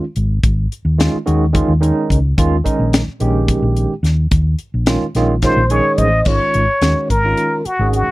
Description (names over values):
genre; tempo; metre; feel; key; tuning
electric jazz fusion; 216 BPM (eighths); 7/8; straight; Ab mixolydian; A4 = 440 Hz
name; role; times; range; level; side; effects
barky tine electric piano; accompaniment; 0.0-8.1 s; Eb3 to Ab5; -18 LUFS; right 2 dB; overdrive, medium tremolo, lush chorus
hollow-body short-scale fingered electric bass; bass; 0.2-8.1 s; Ab1 to Eb2; -16 LUFS; equal; none
crisp fusion drum kit; drums; 0.2-8.1 s; crash cymbal, hi-hat, kick drum, snare drum; -18 LUFS; left 1 dB; none
trumpet with plunger mute; melody; 5.4-8.1 s; Gb4 to Eb5; -16 LUFS; left 1 dB; none
room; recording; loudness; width
little or no reverb; dry, close 1970s-style studio recording; -13 LUFS; side -19 dB against mid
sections
0.0-6.3 A section; 6.3-8.1 B section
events
tine electric piano fill 5.4-6.3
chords
0.0 Absus4; 2.4 Eb9sus4; 6.3 Ab9sus4